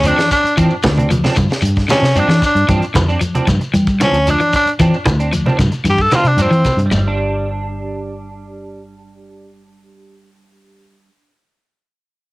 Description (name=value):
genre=afrobeat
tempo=114 BPM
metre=4/4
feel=straight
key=unclear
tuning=A4 = 441 Hz
part: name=raspy tenor saxophone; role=melody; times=0.0-6.8 s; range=C4 to A4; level=-16 LUFS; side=equal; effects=cassette tape, analog delay
part: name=clean electric guitar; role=stabs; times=0.0-11.3 s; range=F3 to D4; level=-23 LUFS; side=right 3 dB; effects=ensemble chorus, cassette tape
part: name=fingered electric bass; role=bass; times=0.0-11.1 s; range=G1 to G3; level=-16 LUFS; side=equal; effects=none
part: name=shekere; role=percussion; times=0.0-7.0 s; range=none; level=-26 LUFS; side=left 2 dB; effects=none
part: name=tight funk drum kit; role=drums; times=0.1-6.9 s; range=hi-hat, kick drum, snare drum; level=-22 LUFS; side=equal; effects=cassette tape
part: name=electric guitar at the edge of break-up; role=arpeggios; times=0.2-7.1 s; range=G2 to F3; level=-21 LUFS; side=left 2 dB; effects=tremolo, cassette tape
part: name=congas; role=percussion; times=0.8-7.0 s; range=none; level=-18 LUFS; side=right 1 dB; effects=none
room=light reverb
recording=home recording on cassette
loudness=-12 LUFS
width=side -20 dB against mid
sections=0.0-6.9 A section; 6.9-11.1 B section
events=tenor saxophone solo 0.0-6.9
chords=0.0 G7sus4; 6.9 G5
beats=0.04 | 0.56 1.09 1.62 2.15 | 2.68 3.21 3.74 4.27 | 4.79 5.32 5.85 6.38 | 6.91 7.44 7.97 8.50 | 9.02 9.55 10.08 10.61